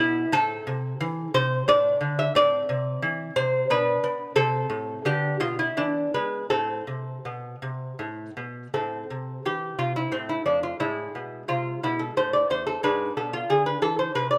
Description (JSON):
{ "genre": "classical, baroque-style dance for lute", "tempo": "79-92 BPM", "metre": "3/4", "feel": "rubato", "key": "A minor", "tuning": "A4 = 436 Hz", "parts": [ { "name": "lute", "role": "solo", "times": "0.0-14.4 s", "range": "E2 to E5", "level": "-26 LUFS", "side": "equal", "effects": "none" } ], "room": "light reverb", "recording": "close, detailed microphones", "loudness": "-26 LUFS", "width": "mono", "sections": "0.0-8.7 A section; 8.7-14.4 A section", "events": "none", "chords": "0.3 Am; 1.7 D5/A; 2.3 Am; 3.7 Bm; 4.4 Am/C; 5.1 Bdim; 5.8 E7; 6.5 Am; 10.1 F/A; 10.8 E/A; 12.2 A5; 12.8 E7/G#" }